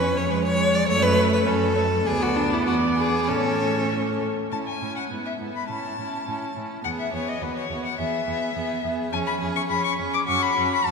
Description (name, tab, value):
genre	quick classical-period movement for string quartet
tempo	103 BPM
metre	2/4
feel	rubato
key	A major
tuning	A4 = 441 Hz
part	rich violin	melody	0.0-10.9 s	B4 to D6	-27 LUFS	left 4 dB	none
part	clear violin	second line	0.0-10.9 s	D4 to D5	-26 LUFS	left 1 dB	none
part	clear viola	accompaniment	0.0-10.9 s	G#3 to C#4	-28 LUFS	right 1 dB	none
part	warm cello	bass	0.0-10.9 s	D2 to A2	-29 LUFS	right 4 dB	none
room	wet church reverb, RT60 3.2 s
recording	minimal, uncompressed stereo recording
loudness	-21 LUFS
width	side -5 dB against mid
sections	0.0-4.5 A section; 4.5-10.9 A section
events	none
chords	0.0 C#/E#; 0.9 F#m; 2.1 Bm/D; 2.7 E7; 3.3 A; 5.1 E/G#; 5.7 A; 6.8 E; 7.4 B/D#; 8.0 E; 9.1 C#/E#; 10.3 F#5